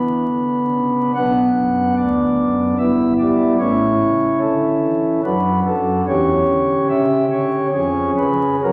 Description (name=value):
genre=classical, chorale-style piece for pipe organ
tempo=73 BPM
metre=3/4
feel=rubato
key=unclear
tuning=A4 = 439 Hz
part: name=pipe organ, flutes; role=solo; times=0.0-8.7 s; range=G1 to F#5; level=-17 LUFS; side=equal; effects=none
room=wet recital hall reverb, RT60 1.7 s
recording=vinyl crackle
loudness=-17 LUFS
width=mono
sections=0.0-8.7 A section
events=none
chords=0.0 Bm; 2.8 Em/G; 3.6 A; 5.2 D/F#; 6.1 C#dim/E; 7.7 C#7/E#